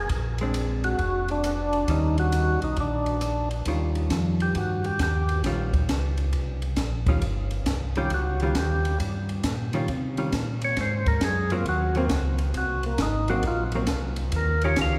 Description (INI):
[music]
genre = soul jazz organ trio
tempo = 135 BPM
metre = 4/4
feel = swing 66% on 8ths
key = Eb mixolydian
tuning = A4 = 439 Hz
[part]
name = percussive tonewheel organ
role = melody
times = 0.0-15.0 s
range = Bb3 to F5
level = -30 LUFS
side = equal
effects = slow rotary speaker
[part]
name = mellow tonewheel organ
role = bass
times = 0.0-15.0 s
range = F1 to C3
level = -29 LUFS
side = equal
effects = slow rotary speaker
[part]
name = compact cocktail drum kit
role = drums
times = 0.1-14.9 s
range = hi-hat, kick drum, ride cymbal, rim click, snare drum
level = -33 LUFS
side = equal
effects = none
[part]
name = hollow-body jazz guitar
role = accompaniment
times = 0.4-15.0 s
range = Eb3 to G4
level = -34 LUFS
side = equal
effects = none
[sound]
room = wet church reverb, RT60 3.8 s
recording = recorded in a church or concert hall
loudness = -25 LUFS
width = mono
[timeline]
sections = 0.0-3.7 A section; 3.7-15.0 B section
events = tonewheel organ solo 3.7-15.0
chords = 0.0 Bb9; 1.9 Eb7; 2.8 Bb; 3.7 Eb9; 10.8 Ab9; 14.3 Eb9